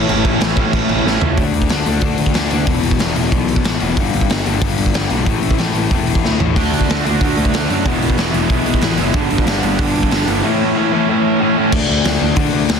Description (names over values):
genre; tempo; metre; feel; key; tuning
punk rock; 186 BPM; 4/4; straight; unclear; A4 = 440 Hz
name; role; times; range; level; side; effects
distorted electric guitar; riff; 0.0-12.8 s; E2 to D4; -18 LUFS; left 16 dB; distortion
overdriven electric guitar; riff; 0.0-1.4, 6.6-11.7 s; G2 to F#4; -18 LUFS; right 19 dB; none
fuzz picked electric bass; bass; 0.0-12.8 s; E1 to D3; -20 LUFS; right 1 dB; overdrive
raw garage drum kit; drums; 0.1-12.8 s; crash cymbal, hi-hat, kick drum, snare drum, toms; -18 LUFS; right 1 dB; soft clipping on snare
room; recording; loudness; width
little or no reverb; dense, heavily limited modern master; -13 LUFS; side -6 dB against mid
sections
0.0-1.4 A section; 1.4-11.7 B section; 11.7-12.8 C section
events
drum fill 1.1-1.4, 6.2-6.6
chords
0.0 A; 1.4 D5; 2.7 E5; 4.0 G5; 5.3 A5; 6.6 D; 7.9 E; 9.2 G; 10.4 A; 11.7 D5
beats
| 0.09 0.41 0.73 1.06 | 1.38 1.70 2.03 2.35 | 2.67 3.00 3.32 3.65 | 3.97 4.29 4.62 4.94 | 5.27 5.59 5.91 6.24 | 6.56 6.89 7.21 7.53 | 7.86 8.18 8.50 8.83 | 9.15 9.47 9.80 10.12 | 10.44 10.77 11.09 11.41 | 11.73 12.05 12.37 12.70